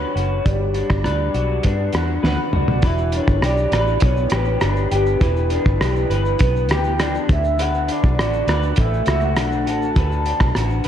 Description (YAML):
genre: indie pop, bedroom pop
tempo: 101 BPM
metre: 4/4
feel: straight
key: unclear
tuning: A4 = 441 Hz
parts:
  - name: soft octave-layered synth lead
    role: melody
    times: 0.0-10.8 s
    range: B4 to A5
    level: -24 LUFS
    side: right 2 dB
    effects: phaser, lush chorus, analog delay
  - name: electric guitar through a small old amp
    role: accompaniment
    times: 0.0-10.9 s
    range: D3 to B4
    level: -23 LUFS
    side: left 3 dB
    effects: analog chorus, vibrato effect
  - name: vintage muted fingered electric bass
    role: bass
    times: 0.0-10.9 s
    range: E1 to G2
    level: -21 LUFS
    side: equal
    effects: none
  - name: cloth-damped thuddy drum kit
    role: drums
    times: 0.2-10.9 s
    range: hi-hat, kick drum, rim click, shaker, snare drum, toms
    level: -21 LUFS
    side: equal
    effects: none
room: moderate lush hall reverb, RT60 2.4 s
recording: dreamy mix soaked in reverb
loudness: -16 LUFS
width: side -10 dB against mid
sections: 0.0-2.8 A section; 2.8-10.9 B section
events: drum fill 2.2-2.8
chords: 0.0 Gmaj7; 2.8 Em7; 7.3 D6